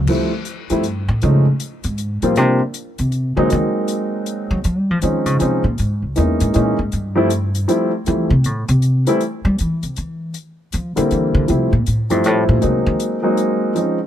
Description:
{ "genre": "jazz piano trio", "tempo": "158 BPM", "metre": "3/4", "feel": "swing 64% on 8ths", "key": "unclear", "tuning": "A4 = 438 Hz", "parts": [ { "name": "upright bass", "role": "bass", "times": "0.0-12.9 s", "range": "Db2 to G3", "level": "-17 LUFS", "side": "equal", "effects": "none" }, { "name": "warm concert grand piano", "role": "melody", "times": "0.1-14.0 s", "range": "D3 to F4", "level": "-18 LUFS", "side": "equal", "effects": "none" }, { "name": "open jazz drum kit", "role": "drums", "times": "0.1-13.9 s", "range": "crash cymbal, hi-hat, kick drum", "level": "-29 LUFS", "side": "left 4 dB", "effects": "none" } ], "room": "little or no reverb", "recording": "none", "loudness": "-15 LUFS", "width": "side -10 dB against mid", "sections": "0.1-9.2 A section; 9.2-14.1 A section", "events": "upright bass solo 0.1-14.1", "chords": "0.1 Fmaj9; 1.2 Faug; 2.4 N.C.; 3.5 Ab7; 4.6 Dbmaj7; 5.8 Dbm69; 6.9 Fmaj9; 9.2 N.C.; 10.3 C9; 11.5 Fmaj7; 12.6 Ab7" }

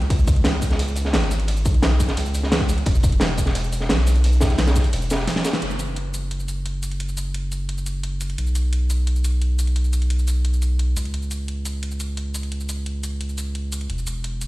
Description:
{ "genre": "liquid drum and bass", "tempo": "174 BPM", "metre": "4/4", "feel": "straight", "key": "unclear", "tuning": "A4 = 440 Hz", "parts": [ { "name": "saturated sub bass", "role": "bass", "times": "0.0-14.5 s", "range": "E1 to C#2", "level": "-22 LUFS", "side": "equal", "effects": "none" }, { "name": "pop drum kit", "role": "drums", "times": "0.0-14.5 s", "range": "hi-hat, ride cymbal, shaker, snare drum", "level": "-27 LUFS", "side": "equal", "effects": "small room reverb" }, { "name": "crunchy breakbeat drum kit", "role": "drums", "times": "0.1-5.6 s", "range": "hi-hat, snare drum", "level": "-26 LUFS", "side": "equal", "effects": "high-pass filter on hats, small room reverb, high-pass filter on snare, high-pass filter on room" }, { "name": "electronic kick drum", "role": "drums", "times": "0.1-4.8 s", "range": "none", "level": "-20 LUFS", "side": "equal", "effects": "small room reverb" } ], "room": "studio ambience", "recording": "played on a big sound system in a bare room, stone room reverb", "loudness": "-20 LUFS", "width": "side -18 dB against mid", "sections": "0.0-5.6 A section; 5.6-14.5 B section", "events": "drop 0.0-5.6; drum fill 5.3-5.6; band accent 5.5", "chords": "none" }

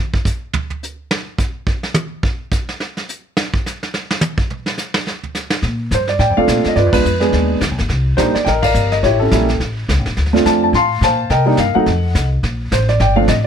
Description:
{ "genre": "jazz piano trio", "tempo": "212 BPM", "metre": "4/4", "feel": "swing 59% on 8ths", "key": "Bb major", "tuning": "A4 = 440 Hz", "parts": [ { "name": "vintage brush drum kit", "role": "drums", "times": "0.1-13.5 s", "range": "brushed snare drum, hi-hat, kick drum, ride cymbal, snare drum, toms", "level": "-20 LUFS", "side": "right 1 dB", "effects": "none" }, { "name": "upright bass", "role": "bass", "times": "5.6-13.5 s", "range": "G1 to C3", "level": "-17 LUFS", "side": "left 1 dB", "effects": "none" }, { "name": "warm concert grand piano", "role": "melody", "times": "5.9-13.5 s", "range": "F3 to C6", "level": "-14 LUFS", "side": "equal", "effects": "none" } ], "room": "little or no reverb", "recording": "close, detailed microphones", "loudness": "-14 LUFS", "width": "side -8 dB against mid", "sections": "0.0-5.6 A section; 5.6-13.5 B section", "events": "drum solo 0.0-5.6; band accent 6.9, 8.6", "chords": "0.0 N.C.; 5.6 Bbmaj7; 6.8 G7b9; 7.9 Cm9; 9.0 A7b9; 10.2 Dm7; 11.3 Cm7; 11.9 F7b9; 12.4 Bbmaj7" }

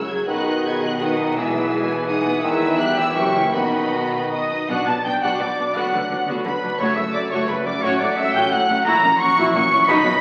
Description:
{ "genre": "classical, dramatic, fast romantic movement for symphony orchestra", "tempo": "155-177 BPM", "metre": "3/4", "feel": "rubato", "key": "B major, B minor from 4.7 s", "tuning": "A4 = 439 Hz", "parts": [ { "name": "warm symphonic violin section", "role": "melody", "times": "0.0-10.2 s", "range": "B5 to C#7", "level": "-30 LUFS", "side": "equal", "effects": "none" }, { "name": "warm symphonic violin section", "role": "second line", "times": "0.0-10.2 s", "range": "B4 to C#6", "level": "-29 LUFS", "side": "equal", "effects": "none" }, { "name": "clear symphonic viola section", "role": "accompaniment", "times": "0.0-10.1 s", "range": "C#3 to D#5", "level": "-28 LUFS", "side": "equal", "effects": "none" }, { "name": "bright trombone section", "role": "sustained chords", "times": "0.0-10.2 s", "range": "D#3 to B3", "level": "-34 LUFS", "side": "equal", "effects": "none" }, { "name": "dark French horn section", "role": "sustained chords", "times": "0.0-10.2 s", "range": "B3 to G#4", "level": "-32 LUFS", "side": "equal", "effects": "none" }, { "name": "clear symphonic cello section", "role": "bass", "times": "0.1-10.1 s", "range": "E2 to D3", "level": "-33 LUFS", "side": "equal", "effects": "none" }, { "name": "rich studio double bass section", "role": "bass", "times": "0.1-10.1 s", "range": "E1 to D2", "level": "-37 LUFS", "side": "equal", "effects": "none" }, { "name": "silver concert flute", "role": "second line", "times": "0.3-10.2 s", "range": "B4 to C#6", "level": "-27 LUFS", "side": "equal", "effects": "none" }, { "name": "warm clarinet", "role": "second line", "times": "0.3-10.2 s", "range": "A4 to F#5", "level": "-33 LUFS", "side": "equal", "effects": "none" }, { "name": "mellow bassoon", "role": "accompaniment", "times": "0.3-4.5 s", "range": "D#3 to E3", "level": "-27 LUFS", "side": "equal", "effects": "none" }, { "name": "mellow trumpet section", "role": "stabs", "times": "0.3-10.2 s", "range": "F#4 to C#6", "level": "-28 LUFS", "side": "equal", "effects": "none" } ], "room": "wet scoring stage reverb, RT60 1.8 s", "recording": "very old 78 rpm record, vinyl crackle", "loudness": "-20 LUFS", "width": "mono", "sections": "0.0-4.7 A section; 4.7-10.2 B section", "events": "none", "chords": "0.3 B; 1.4 E/B; 2.4 Emaj7; 2.8 Em; 3.2 F#7b9; 3.5 B; 4.7 Bm; 5.8 Bm/D; 6.8 F#m; 7.8 F#m/A; 8.9 F#7/A#" }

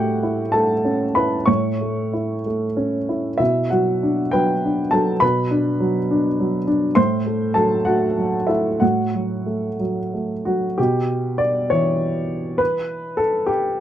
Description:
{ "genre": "neoclassical minimalist piano", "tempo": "60-70 BPM (dotted quarters)", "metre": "6/8", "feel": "rubato", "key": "unclear", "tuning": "A4 = 439 Hz", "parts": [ { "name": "warm upright piano", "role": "solo", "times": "0.0-13.8 s", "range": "A2 to C#6", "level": "-18 LUFS", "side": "equal", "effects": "none" } ], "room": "little or no reverb", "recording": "dry, close 1970s-style studio recording", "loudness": "-18 LUFS", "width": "side -11 dB against mid", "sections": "0.0-10.8 A section; 10.8-13.8 B section", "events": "none", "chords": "0.0 A; 3.4 Bm; 7.0 Am6; 10.8 Em/B" }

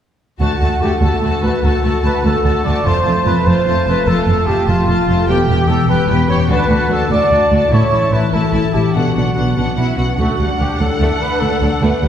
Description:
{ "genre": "cinematic", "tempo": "98 BPM (dotted quarters)", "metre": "12/8", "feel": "straight", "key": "D major", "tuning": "A4 = 440 Hz", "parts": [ { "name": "dark symphonic violin section", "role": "melody", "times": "0.4-12.1 s", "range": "F#5 to A5", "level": "-24 LUFS", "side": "left 2 dB", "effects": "none" }, { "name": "warm symphonic violin section", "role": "second line", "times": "0.4-12.1 s", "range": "D4 to G4", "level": "-24 LUFS", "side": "left 4 dB", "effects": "none" }, { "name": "rich symphonic viola section", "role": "accompaniment", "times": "0.4-12.1 s", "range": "F#3 to E4", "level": "-25 LUFS", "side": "equal", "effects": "none" }, { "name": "concert harp", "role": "arpeggios", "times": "0.4-12.1 s", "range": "A2 to A4", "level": "-22 LUFS", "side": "left 6 dB", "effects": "none" }, { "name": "dark trumpet section", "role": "stabs", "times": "0.4-12.1 s", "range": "F4 to D5", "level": "-18 LUFS", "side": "right 1 dB", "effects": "none" }, { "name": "rich symphonic cello section", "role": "bass", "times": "0.4-12.1 s", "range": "D2 to B2", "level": "-19 LUFS", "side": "right 1 dB", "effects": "none" }, { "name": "warm symphonic double bass section", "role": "bass", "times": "0.4-12.1 s", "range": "E1 to D2", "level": "-19 LUFS", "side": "right 2 dB", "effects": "none" } ], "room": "wet scoring stage reverb, RT60 1.4 s", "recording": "heard from further back in the room", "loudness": "-12 LUFS", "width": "side -9 dB against mid", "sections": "0.4-12.1 A section", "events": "none", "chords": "0.4 D; 2.8 F; 5.3 Em; 6.5 D; 7.7 A; 8.9 Bm; 10.2 D" }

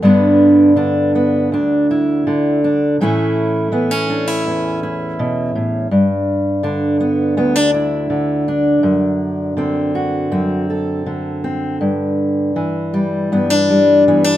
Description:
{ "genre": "folk, solo fingerstyle acoustic guitar", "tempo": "81 BPM", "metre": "4/4", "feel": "straight", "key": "G major", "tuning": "A4 = 440 Hz", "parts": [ { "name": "fingerpicked steel-string acoustic guitar", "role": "solo", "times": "0.0-14.4 s", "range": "D2 to A4", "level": "-14 LUFS", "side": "equal", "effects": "none" } ], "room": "light reverb", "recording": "minimal, uncompressed stereo recording", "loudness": "-14 LUFS", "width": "side -13 dB against mid", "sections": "0.0-11.8 A section; 11.8-14.4 B section", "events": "none", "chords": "0.0 G; 3.0 A; 5.9 G; 8.8 D7/F#; 11.8 Em7/G" }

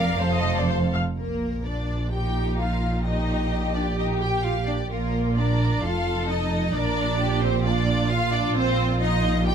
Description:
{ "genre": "quick classical-period movement for string orchestra", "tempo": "129 BPM", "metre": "4/4", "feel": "rubato", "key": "Bb major", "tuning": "A4 = 440 Hz", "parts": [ { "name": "rich symphonic violin section", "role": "melody", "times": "0.0-9.5 s", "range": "Bb4 to G5", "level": "-29 LUFS", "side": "equal", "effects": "none" }, { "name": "rich symphonic violin section", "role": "second line", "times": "0.0-9.5 s", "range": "Eb4 to D5", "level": "-30 LUFS", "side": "equal", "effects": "none" }, { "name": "rich symphonic viola section", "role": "accompaniment", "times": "0.0-9.5 s", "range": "Bb3 to F5", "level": "-29 LUFS", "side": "left 1 dB", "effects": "none" }, { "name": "rich symphonic double bass section", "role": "bass", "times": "0.0-9.5 s", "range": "F1 to Bb1", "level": "-26 LUFS", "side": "right 1 dB", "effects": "none" }, { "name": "warm symphonic cello section", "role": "bass", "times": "0.0-9.5 s", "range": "F2 to Bb2", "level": "-28 LUFS", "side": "right 4 dB", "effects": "none" } ], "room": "light reverb", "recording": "none", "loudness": "-21 LUFS", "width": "side -7 dB against mid", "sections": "0.0-1.2 A section; 1.2-9.5 B section", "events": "none", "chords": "0.2 F; 1.2 Bb; 5.8 F; 6.7 Bb5" }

